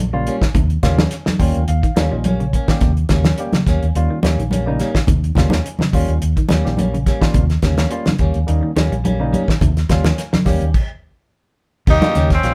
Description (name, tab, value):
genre	afrobeat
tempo	106 BPM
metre	4/4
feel	swing 53% on 16ths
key	Eb mixolydian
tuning	A4 = 441 Hz
part	fingered electric bass	bass	0.0-12.5 s	Bb1 to Eb2	-21 LUFS	equal	none
part	barky tine electric piano	accompaniment	0.1-12.5 s	G3 to G5	-27 LUFS	equal	none
part	clean electric guitar	arpeggios	0.1-12.3 s	C3 to G3	-28 LUFS	equal	none
part	clean electric guitar	stabs	0.3-12.3 s	G3 to Db4	-28 LUFS	equal	none
part	damped 70s drum kit	drums	0.3-12.5 s	crash cymbal, hi-hat, kick drum, snare drum	-20 LUFS	equal	none
part	congas	percussion	0.5-12.5 s	none	-23 LUFS	equal	none
part	raspy tenor saxophone	melody	11.9-12.5 s	C4 to Eb4	-19 LUFS	equal	none
part	warm trumpet	second line	11.9-12.5 s	Db4 to G4	-28 LUFS	equal	none
room	moderate studio reverb, RT60 0.6 s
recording	band playing live in one room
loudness	-17 LUFS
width	mono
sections	0.0-11.9 A section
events	tine electric piano fill 1.1-2.8; stop 10.7-11.9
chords	0.0 Eb7